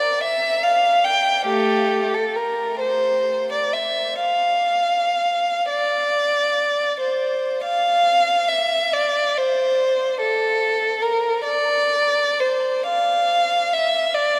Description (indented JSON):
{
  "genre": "classical, free, expressive piece for unaccompanied violin",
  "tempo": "24-49 BPM (dotted quarters)",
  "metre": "6/8",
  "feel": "rubato",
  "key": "F major",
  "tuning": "A4 = 440 Hz",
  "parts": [
    { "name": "rich violin", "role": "solo", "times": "0.0-14.4 s", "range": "A3 to G5", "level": "-20 LUFS", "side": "equal", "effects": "none" }
  ],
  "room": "wet cathedral reverb, RT60 6.1 s",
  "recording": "none",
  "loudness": "-20 LUFS",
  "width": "mono",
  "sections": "0.0-7.6 A section; 7.6-14.4 B section",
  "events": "none",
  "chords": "none"
}